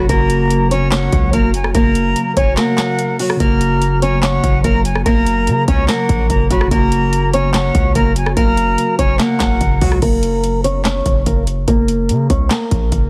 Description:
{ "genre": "hip hop, trap", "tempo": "145 BPM", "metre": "4/4", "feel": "half-time", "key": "F# major", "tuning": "A4 = 436 Hz", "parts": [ { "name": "fingerpicked steel-string acoustic guitar", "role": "melody", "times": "0.0-13.1 s", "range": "F#3 to C#5", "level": "-20 LUFS", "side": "equal", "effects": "low-pass filter, digital delay" }, { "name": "silver concert flute", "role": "second line", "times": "0.0-10.0 s", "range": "F#5 to B5", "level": "-25 LUFS", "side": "equal", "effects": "digital delay" }, { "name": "mellow tine electric piano", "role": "accompaniment", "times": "0.0-10.0 s", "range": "C#3 to F#4", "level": "-24 LUFS", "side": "equal", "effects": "low-pass filter" }, { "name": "ethereal airy pad", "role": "sustained chords", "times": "0.2-10.0 s", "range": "C#3 to F#4", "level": "-30 LUFS", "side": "equal", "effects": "none" }, { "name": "hard-hitting 808-style bass", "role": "bass", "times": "0.0-13.1 s", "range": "F#1 to C#3", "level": "-21 LUFS", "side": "equal", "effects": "none" }, { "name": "booming analog drum machine", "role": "drums", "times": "0.1-13.1 s", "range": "crash cymbal, handclaps, hi-hat, kick drum, rim click, snare drum", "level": "-20 LUFS", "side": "equal", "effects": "none" } ], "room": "little or no reverb", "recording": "dense, heavily limited modern master, vinyl crackle", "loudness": "-15 LUFS", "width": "mono", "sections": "0.0-10.0 A section; 10.0-13.1 B section", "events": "kick muted 2.6-3.4", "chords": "0.0 F#" }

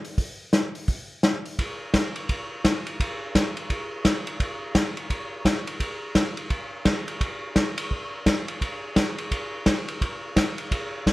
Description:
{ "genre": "jazz", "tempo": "171 BPM", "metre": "4/4", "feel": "swing 62% on 8ths", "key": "none", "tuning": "none", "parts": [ { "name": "vintage drum kit", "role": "drums", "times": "0.0-11.1 s", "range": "hi-hat, kick drum, ride cymbal, snare drum", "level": "-23 LUFS", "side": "equal", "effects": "none" } ], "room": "light reverb", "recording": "dark, warm production", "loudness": "-23 LUFS", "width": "side -18 dB against mid", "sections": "0.0-1.6 A section; 1.6-11.1 A section", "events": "none", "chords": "none" }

